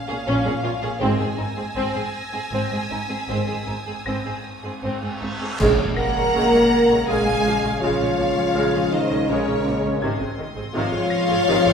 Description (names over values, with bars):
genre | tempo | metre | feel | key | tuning
cinematic, suspense film score | 80 BPM | 3/4 | uneven beats | Bb minor | A4 = 443 Hz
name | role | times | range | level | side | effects
rich symphonic violin section | melody | 0.0-11.7 s | Db5 to Bb5 | -28 LUFS | left 2 dB | none
bright baby grand piano | texture | 0.0-11.7 s | F5 to Bb6 | -38 LUFS | left 2 dB | none
rich studio violin section | second line | 0.1-11.7 s | C4 to Gb5 | -27 LUFS | left 1 dB | none
rich symphonic viola section | accompaniment | 0.1-11.7 s | C3 to Db4 | -27 LUFS | right 2 dB | none
warm symphonic cello section | bass | 0.1-11.7 s | Ab2 to Bb3 | -27 LUFS | equal | none
rich studio double bass section | bass | 0.3-11.7 s | Ab1 to Bb1 | -30 LUFS | right 2 dB | none
dark French horn section | sustained chords | 1.0-11.7 s | C4 to Bb4 | -25 LUFS | left 3 dB | none
mellow trombone section | sustained chords | 1.0-11.7 s | C3 to Ab3 | -28 LUFS | right 2 dB | none
rich symphonic violin section | texture | 1.0-11.7 s | C6 to Bb6 | -38 LUFS | equal | none
cymbal swell, clash cymbals and concert bass drum | percussion | 3.3-7.0 s | none | -32 LUFS | equal | none
reverse cymbal and impact | sound effects | 4.6-7.8 s | none | -35 LUFS | right 1 dB | none
timpani | percussion | 5.6-6.7 s | Bb2 | -29 LUFS | equal | none
dark clarinet | second line | 6.0-11.7 s | Db4 to Bb4 | -26 LUFS | equal | none
room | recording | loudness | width
wet recital hall reverb, RT60 1.4 s | heard from further back in the room | -19 LUFS | side -6 dB against mid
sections
0.0-5.6 A section; 5.6-11.7 B section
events
reverse cymbal 4.6-5.6; band accent 5.6-6.3; impact 5.6-7.8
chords
0.0 Bbm7; 1.0 Ab; 5.6 Bbm7; 10.0 Ab